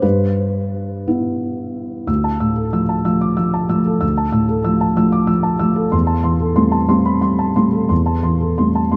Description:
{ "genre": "neoclassical minimalist piano", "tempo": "57-63 BPM (dotted quarters)", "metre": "6/8", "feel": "rubato", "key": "unclear", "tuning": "A4 = 440 Hz", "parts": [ { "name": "felt-muted upright piano", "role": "solo", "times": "0.0-9.0 s", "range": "D2 to E6", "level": "-17 LUFS", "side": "equal", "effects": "none" } ], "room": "light reverb, studio reverb", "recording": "rough home demo mix", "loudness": "-17 LUFS", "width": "mono", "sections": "0.0-2.1 A section; 2.1-9.0 B section", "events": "none", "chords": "0.0 Em/G; 2.1 Dmadd9; 5.9 Am7/E" }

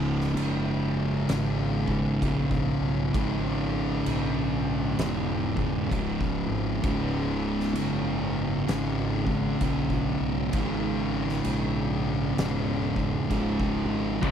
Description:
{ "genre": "stoner and doom metal", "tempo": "65 BPM", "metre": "4/4", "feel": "swing 63% on 8ths", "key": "unclear", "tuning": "A4 = 445 Hz", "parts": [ { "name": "thick fuzz guitar", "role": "riff", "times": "0.0-14.3 s", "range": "C#2 to C#3", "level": "-29 LUFS", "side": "left 9 dB", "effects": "distortion" }, { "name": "thick fuzz guitar", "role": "riff", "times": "0.0-14.3 s", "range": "C#2 to C#3", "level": "-29 LUFS", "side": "right 7 dB", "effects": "distortion" }, { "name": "fuzz fingered electric bass", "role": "bass", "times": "0.0-14.3 s", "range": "C#1 to B1", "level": "-32 LUFS", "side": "equal", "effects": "overdrive" }, { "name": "oversized low-tuned drum kit", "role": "drums", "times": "0.2-14.3 s", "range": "crash cymbal, kick drum, snare drum", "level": "-34 LUFS", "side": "equal", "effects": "none" }, { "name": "distorted electric guitar", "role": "riff", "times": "14.2-14.3 s", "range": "C#2 to C#3", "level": "-27 LUFS", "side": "left 2 dB", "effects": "distortion" } ], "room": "little or no reverb", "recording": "none", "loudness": "-24 LUFS", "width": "side -8 dB against mid", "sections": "0.0-14.3 A section", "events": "none", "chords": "0.0 C#m" }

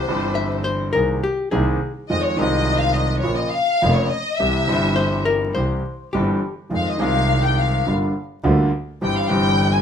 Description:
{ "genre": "tango", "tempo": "104 BPM", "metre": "4/4", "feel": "rubato", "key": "unclear", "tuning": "A4 = 439 Hz", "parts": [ { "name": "rich studio violin section", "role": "second line", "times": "0.0-9.8 s", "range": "C5 to Ab5", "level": "-22 LUFS", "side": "left 3 dB", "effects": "none" }, { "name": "bright concert grand piano", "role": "accompaniment", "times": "0.0-9.8 s", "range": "F1 to Ab4", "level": "-21 LUFS", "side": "right 1 dB", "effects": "none" }, { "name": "clear double bass", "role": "bass", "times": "0.0-9.8 s", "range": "F1 to F2", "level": "-24 LUFS", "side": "equal", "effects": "none" }, { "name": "archtop guitar, miked and amplified", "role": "second line", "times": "0.4-6.5 s", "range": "G4 to E5", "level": "-23 LUFS", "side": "left 4 dB", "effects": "none" } ], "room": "moderate studio reverb, RT60 0.8 s", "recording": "minimal, uncompressed stereo recording, vinyl crackle", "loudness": "-18 LUFS", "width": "side -8 dB against mid", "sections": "0.0-9.8 A section", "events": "violin section solo 0.0-9.8", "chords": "0.0 C; 1.0 Abadd9/C; 2.1 Fm7; 3.3 Bbm; 4.4 C; 6.7 Fm7; 7.9 Gm7; 9.0 C/G" }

